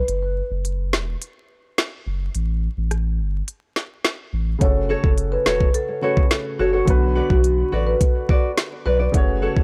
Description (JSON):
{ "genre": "dancehall", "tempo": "106 BPM", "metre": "4/4", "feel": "straight", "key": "B minor", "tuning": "A4 = 441 Hz", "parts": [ { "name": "saturated sub bass", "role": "bass", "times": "0.0-9.6 s", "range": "E1 to B1", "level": "-25 LUFS", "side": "equal", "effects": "none" }, { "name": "island pop drum kit", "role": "drums", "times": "0.1-9.6 s", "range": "hi-hat, kick drum, rim click, snare drum", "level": "-21 LUFS", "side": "equal", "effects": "none" }, { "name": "marimba with medium mallets", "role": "melody", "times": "4.6-9.0 s", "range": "F#4 to C#5", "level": "-26 LUFS", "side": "equal", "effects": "tape echo" }, { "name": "warm baby grand piano", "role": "accompaniment", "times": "4.6-9.6 s", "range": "C#3 to C#5", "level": "-31 LUFS", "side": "equal", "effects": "none" }, { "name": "nylon-string guitar", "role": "arpeggios", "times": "4.9-9.6 s", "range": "F#4 to D5", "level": "-28 LUFS", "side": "equal", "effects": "tape echo" } ], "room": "small room ambience", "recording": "dry, gritty hardware recording, vinyl crackle", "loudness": "-21 LUFS", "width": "mono", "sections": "0.0-9.6 A section", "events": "break 0.0-4.6", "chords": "0.1 N.C.; 4.6 F#m; 6.9 Bm", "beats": "| 0.08 0.65 1.22 1.78 | 2.35 2.91 3.48 4.05 | 4.61 5.18 5.74 6.31 | 6.88 7.44 8.01 8.57 | 9.14" }